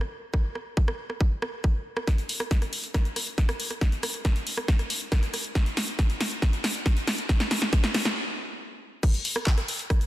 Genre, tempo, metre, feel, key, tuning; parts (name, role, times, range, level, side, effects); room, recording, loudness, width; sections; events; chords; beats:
trance; 138 BPM; 4/4; straight
techno drum kit; drums; 0.0-10.1 s; crash cymbal, handclaps, hi-hat, rim click, snare drum; -28 LUFS; equal; overdrive, studio reverb
electronic kick drum; drums; 0.3-10.0 s; -23 LUFS; equal; overdrive, studio reverb
light reverb, digital ambience; dense, heavily limited modern master; -24 LUFS; side -15 dB against mid
0.0-2.1 A section; 2.1-9.0 B section; 9.0-10.1 C section
build-up 2.1-9.0; drum fill 2.1-8.2; stop 8.2-9.0; drop 9.0-10.1
| 0.34 0.77 1.21 1.64 | 2.08 2.51 2.94 3.38 | 3.81 4.25 4.68 5.12 | 5.55 5.99 6.42 6.86 | 7.29 7.73 8.16 8.60 | 9.03 9.47 9.90